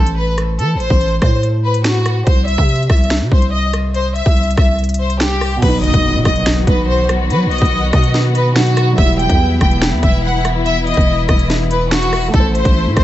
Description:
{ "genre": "hip hop, drill", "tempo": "143 BPM", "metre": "4/4", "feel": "half-time", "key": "unclear", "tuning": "A4 = 440 Hz", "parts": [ { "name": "rich studio violin section", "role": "melody", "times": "0.0-13.0 s", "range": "F#4 to G5", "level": "-19 LUFS", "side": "left 1 dB", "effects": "digital delay" }, { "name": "dark concert grand piano", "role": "accompaniment", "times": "0.0-2.3, 5.6-13.0 s", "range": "B2 to C5", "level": "-24 LUFS", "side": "right 4 dB", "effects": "none" }, { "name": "growling 808-style bass", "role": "bass", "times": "0.0-13.0 s", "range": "E1 to F#3", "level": "-16 LUFS", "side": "equal", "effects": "none" }, { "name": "drill drum kit", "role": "drums", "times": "0.1-13.0 s", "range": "crash cymbal, finger snaps, hi-hat, kick drum, rim click, snare drum", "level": "-16 LUFS", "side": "equal", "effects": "none" }, { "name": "dark symphonic string section", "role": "sustained chords", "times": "5.6-13.0 s", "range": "C3 to F#4", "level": "-22 LUFS", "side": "left 3 dB", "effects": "none" }, { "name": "impact", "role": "sound effects", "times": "5.7-7.3 s", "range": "none", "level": "-25 LUFS", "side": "left 1 dB", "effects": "none" } ], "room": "little or no reverb", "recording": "nothing above 8.0 kHz", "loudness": "-12 LUFS", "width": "side -13 dB against mid", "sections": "0.0-5.6 A section; 5.6-13.0 B section", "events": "impact 5.6-7.3", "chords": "0.0 Am; 2.3 C; 5.6 B; 9.0 Emadd9; 12.3 Am" }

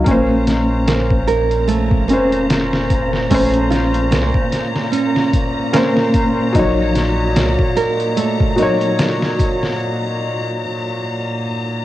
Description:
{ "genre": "trip hop", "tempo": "74 BPM", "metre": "4/4", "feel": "swing 56% on 16ths", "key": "Bb minor", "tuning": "A4 = 435 Hz", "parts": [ { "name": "felt-muted upright piano", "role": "accompaniment", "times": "0.0-11.8 s", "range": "Gb3 to Db5", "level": "-18 LUFS", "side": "left 1 dB", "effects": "harmonic tremolo, cassette tape, tape echo" }, { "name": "nylon-string guitar", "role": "arpeggios", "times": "0.0-9.8 s", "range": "A3 to Bb4", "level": "-22 LUFS", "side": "right 6 dB", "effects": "cassette tape, analog delay" }, { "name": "soft dub sub bass", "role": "bass", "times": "0.0-7.6 s", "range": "F1 to C2", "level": "-21 LUFS", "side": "equal", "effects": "none" }, { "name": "rich chamber string section", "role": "sustained chords", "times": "0.1-11.8 s", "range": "Bb2 to Bb5", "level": "-24 LUFS", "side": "left 1 dB", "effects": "cassette tape" }, { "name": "trip hop sampler-style drum kit", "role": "drums", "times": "0.1-9.8 s", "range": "hi-hat, kick drum, snare drum", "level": "-19 LUFS", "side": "equal", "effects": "cassette tape" }, { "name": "wind-like tuned noise texture", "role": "texture", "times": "1.2-9.8 s", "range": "Bb3 to Bb5", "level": "-29 LUFS", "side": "equal", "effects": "built-in reverb, cassette tape" } ], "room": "moderate studio reverb, RT60 0.6 s", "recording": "home recording on cassette", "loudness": "-14 LUFS", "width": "side -14 dB against mid", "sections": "0.0-11.8 A section", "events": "break 9.8-11.8", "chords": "0.1 Bbmadd9; 6.6 Ebm7/Bb" }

